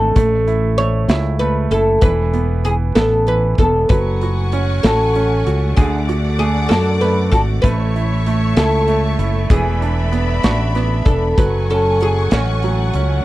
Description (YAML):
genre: six-eight pop ballad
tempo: 64 BPM (dotted quarters)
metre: 6/8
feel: straight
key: F# minor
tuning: A4 = 441 Hz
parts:
  - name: oud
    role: melody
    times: 0.0-13.2 s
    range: F#4 to C#5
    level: -19 LUFS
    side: equal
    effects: none
  - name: clear concert grand piano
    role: accompaniment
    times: 0.0-13.2 s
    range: D3 to F#4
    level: -23 LUFS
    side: right 7 dB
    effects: none
  - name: fretless electric bass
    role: bass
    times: 0.0-13.2 s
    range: E1 to F#2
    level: -18 LUFS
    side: equal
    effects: none
  - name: modern studio drum kit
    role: drums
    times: 0.2-13.1 s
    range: hi-hat, kick drum, snare drum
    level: -15 LUFS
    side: equal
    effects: none
  - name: clear studio string section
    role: sustained chords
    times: 3.9-13.2 s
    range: A3 to D6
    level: -25 LUFS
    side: left 2 dB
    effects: none
room: little or no reverb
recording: dry, close 1970s-style studio recording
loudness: -14 LUFS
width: side -16 dB against mid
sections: 0.0-13.2 A section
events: none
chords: 0.2 A; 2.0 Esus4; 3.9 F#madd9; 5.8 D; 7.6 A; 9.5 E7sus4; 11.4 F#madd9